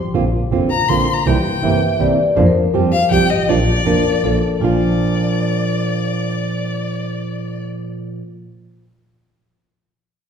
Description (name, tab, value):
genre	tango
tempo	161 BPM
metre	3/4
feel	rubato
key	Bb major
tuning	A4 = 439 Hz
part	warm double bass	bass	0.0-4.8 s	F1 to F2	-20 LUFS	equal	none
part	nylon-string guitar	accompaniment	0.1-8.2 s	Bb2 to G4	-18 LUFS	right 3 dB	none
part	warm violin	second line	0.7-7.6 s	D5 to C6	-21 LUFS	left 5 dB	none
part	vibraphone with medium mallets	second line	1.6-8.2 s	F4 to E5	-22 LUFS	left 4 dB	none
room	wet recital hall reverb, RT60 1.7 s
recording	recorded in a church or concert hall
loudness	-14 LUFS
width	side -7 dB against mid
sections	0.0-4.6 A section; 4.6-6.9 B section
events	violin solo 0.0-4.6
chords	0.1 Bbadd9; 1.3 C7; 2.4 Bb/F; 2.7 Fsus2; 3.5 Bb